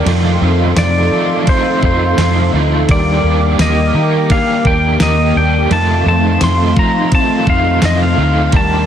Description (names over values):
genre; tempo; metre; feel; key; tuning
dream pop; 85 BPM; 4/4; straight; unclear; A4 = 440 Hz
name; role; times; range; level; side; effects
overdriven electric guitar; accompaniment; 0.0-8.9 s; F2 to G4; -18 LUFS; right 4 dB; tremolo, ensemble chorus
hollow soft pad; sustained chords; 0.0-8.9 s; A3 to D6; -21 LUFS; right 2 dB; ensemble chorus
electric guitar through a small old amp; arpeggios; 0.0-8.9 s; F3 to Bb4; -19 LUFS; left 6 dB; wide subtle chorus, tape echo
vintage muted fingered electric bass; bass; 0.1-8.8 s; D2 to F3; -15 LUFS; equal; none
clean 12-bit digital drum machine; drums; 0.1-8.7 s; kick drum, ride cymbal, snare drum, tambourine; -18 LUFS; equal; none
pedal steel guitar; melody; 0.8-8.9 s; C5 to C6; -17 LUFS; equal; tape echo
room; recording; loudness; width
light reverb, digital ambience; dense, heavily limited modern master; -10 LUFS; side -9 dB against mid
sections
0.0-8.9 A section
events
none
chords
0.1 F7; 2.9 Ebmaj7; 5.7 F7